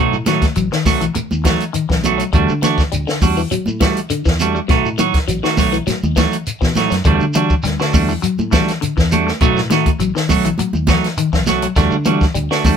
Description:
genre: afrobeat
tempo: 102 BPM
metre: 4/4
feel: straight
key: E minor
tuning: A4 = 441 Hz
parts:
  - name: electric guitar at the edge of break-up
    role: arpeggios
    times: 0.0-12.8 s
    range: B2 to A3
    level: -21 LUFS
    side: left 7 dB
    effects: phaser
  - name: clean electric guitar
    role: stabs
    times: 0.0-12.8 s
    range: F#3 to F#4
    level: -17 LUFS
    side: right 6 dB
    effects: none
  - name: fingered electric bass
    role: bass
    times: 0.0-12.8 s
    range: A1 to D3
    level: -21 LUFS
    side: equal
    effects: none
  - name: shekere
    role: percussion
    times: 0.1-12.8 s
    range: none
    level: -25 LUFS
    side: equal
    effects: none
  - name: compact cocktail drum kit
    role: drums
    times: 0.3-12.8 s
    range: hi-hat, kick drum, snare drum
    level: -18 LUFS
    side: equal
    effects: none
  - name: congas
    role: percussion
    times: 0.3-12.8 s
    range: none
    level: -21 LUFS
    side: right 1 dB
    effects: none
room: light reverb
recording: band playing live in one room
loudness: -14 LUFS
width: side -7 dB against mid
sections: 0.0-12.8 A section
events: none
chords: 0.0 B7; 2.3 Em11; 4.7 B7; 7.1 Em11; 9.4 B7; 11.8 Em11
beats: 0.56 1.15 1.74 | 2.33 2.92 3.51 4.10 | 4.69 5.28 5.87 6.46 | 7.05 7.64 8.23 8.82 | 9.41 10.00 10.59 11.18 | 11.77 12.36

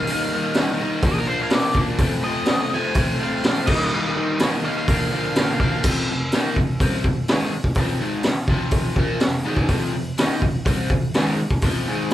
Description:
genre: garage rock duo or trio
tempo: 125 BPM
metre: 4/4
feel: straight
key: unclear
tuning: A4 = 440 Hz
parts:
  - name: octave-fuzz lead guitar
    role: melody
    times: 0.0-5.8 s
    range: Ab4 to Ab5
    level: -26 LUFS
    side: equal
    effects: distortion
  - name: overdriven electric guitar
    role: riff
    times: 0.0-12.1 s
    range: F2 to Eb4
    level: -23 LUFS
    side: left 1 dB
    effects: none
  - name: raw garage drum kit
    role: drums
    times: 0.1-12.1 s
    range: crash cymbal, hi-hat, kick drum, snare drum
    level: -21 LUFS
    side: equal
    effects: none
room: moderate large studio reverb, RT60 0.9 s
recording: band playing live in one room, lossy compression artefacts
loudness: -18 LUFS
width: side -13 dB against mid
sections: 0.0-5.8 A section; 5.8-12.1 B section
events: none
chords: 0.0 Eb; 1.0 Bb; 2.0 F; 3.7 Eb; 4.9 Bb; 5.8 F5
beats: | 0.08 0.56 1.04 1.52 | 2.00 2.48 2.96 3.44 | 3.92 4.40 4.88 5.36 | 5.84 6.32 6.80 7.29 | 7.77 8.25 8.73 9.22 | 9.70 10.18 10.66 11.15 | 11.63 12.12

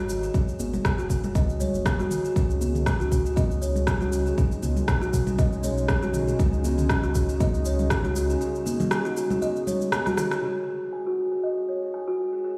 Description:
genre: afro house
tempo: 119 BPM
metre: 4/4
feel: swing 55% on 16ths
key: unclear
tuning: A4 = 440 Hz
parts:
  - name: kalimba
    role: arpeggios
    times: 0.0-12.5 s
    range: F#4 to G#5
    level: -31 LUFS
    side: equal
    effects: sidechain pumping, low-pass filter, dub echo
  - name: dark detuned saw bass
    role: bass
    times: 0.0-8.4 s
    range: F#1 to C#2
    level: -30 LUFS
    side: equal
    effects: sidechain pumping
  - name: afro-pop drum kit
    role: drums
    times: 0.1-10.4 s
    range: rim click, shaker, toms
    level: -33 LUFS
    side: equal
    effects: none
  - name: electronic kick drum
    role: drums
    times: 0.3-8.0 s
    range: none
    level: -27 LUFS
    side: equal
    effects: none
  - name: congas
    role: percussion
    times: 0.6-10.2 s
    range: none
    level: -35 LUFS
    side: equal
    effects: none
  - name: warm analog pad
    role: sustained chords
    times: 2.4-12.6 s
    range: C#3 to A#4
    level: -35 LUFS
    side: equal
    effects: lush chorus, sidechain pumping
room: moderate lush hall reverb, RT60 2.2 s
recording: played on a big sound system in a bare room, stone room reverb, small room ambience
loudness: -25 LUFS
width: mono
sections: 0.0-10.4 A section; 10.4-12.6 B section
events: drum fill 10.1-10.4; filter sweep on analog synth pad 10.4-12.6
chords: 0.0 G#5; 2.4 C#5; 10.4 G#5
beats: | 0.34 0.85 1.35 1.86 | 2.36 2.87 3.37 3.87 | 4.38 4.88 5.39 5.89 | 6.39 6.90 7.40 7.91 | 8.41 8.92 9.42 9.93 | 10.43 10.93 11.44 11.94 | 12.45

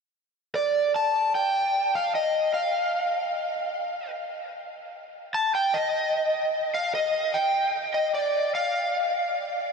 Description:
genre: rock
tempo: 50 BPM (dotted quarters)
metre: 6/8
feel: straight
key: unclear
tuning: A4 = 440 Hz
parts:
  - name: lead guitar through a small cranked amp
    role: melody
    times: 0.6-9.4 s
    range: D5 to A5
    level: -23 LUFS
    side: equal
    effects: overdrive, ping-pong delay
room: wet huge ambient reverb, RT60 6.7 s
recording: dreamy mix soaked in reverb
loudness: -23 LUFS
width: side -5 dB against mid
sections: 0.1-9.7 A section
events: none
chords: none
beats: | 0.14 1.34 | 2.54 3.75 | 4.95 6.15 | 7.35 8.55

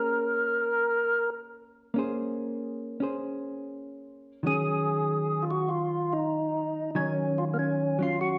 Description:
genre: jazz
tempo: 96 BPM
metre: 4/4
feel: swing 69% on 8ths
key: Bb minor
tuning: A4 = 441 Hz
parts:
  - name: percussive tonewheel organ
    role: melody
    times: 0.0-8.4 s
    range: Bb3 to Bb4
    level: -29 LUFS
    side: equal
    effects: slow rotary speaker, overdrive
  - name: hollow-body jazz guitar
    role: accompaniment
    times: 0.0-8.4 s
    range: Eb3 to C5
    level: -34 LUFS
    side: equal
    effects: none
room: wet recital hall reverb, RT60 1.4 s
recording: recorded in a church or concert hall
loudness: -29 LUFS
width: mono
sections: 0.0-8.4 A section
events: none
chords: 0.0 Bbm9; 4.4 Ebm7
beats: 0.08 0.70 1.33 | 1.95 2.58 3.20 3.83 | 4.45 5.07 5.70 6.32 | 6.95 7.57 8.20

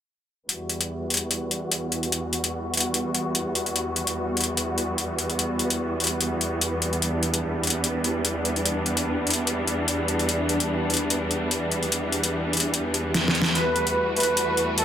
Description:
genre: heavy wobble dubstep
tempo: 147 BPM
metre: 4/4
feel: swing 54% on 16ths, half-time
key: E minor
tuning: A4 = 440 Hz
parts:
  - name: clear symphonic string section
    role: sustained chords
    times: 0.5-14.8 s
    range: E2 to F#4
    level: -25 LUFS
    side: equal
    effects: low-pass filter
  - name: dubstep drum kit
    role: drums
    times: 0.5-14.8 s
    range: hi-hat, snare drum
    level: -24 LUFS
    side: left 1 dB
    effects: overdrive
  - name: soft supersaw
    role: melody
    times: 13.6-14.8 s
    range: A4 to B4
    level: -22 LUFS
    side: right 1 dB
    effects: tape echo
room: moderate lush hall reverb, RT60 1.7 s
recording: none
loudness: -22 LUFS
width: side -10 dB against mid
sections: 0.5-14.8 A section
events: filter sweep on string section 0.5-14.8; drum fill 13.1-13.6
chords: 0.5 Emadd9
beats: | 0.49 0.90 1.31 1.72 | 2.12 2.53 2.94 3.35 | 3.76 4.17 4.57 4.98 | 5.39 5.80 6.21 6.61 | 7.02 7.43 7.84 8.25 | 8.65 9.06 9.47 9.88 | 10.29 10.70 11.10 11.51 | 11.92 12.33 12.74 13.14 | 13.55 13.96 14.37 14.78

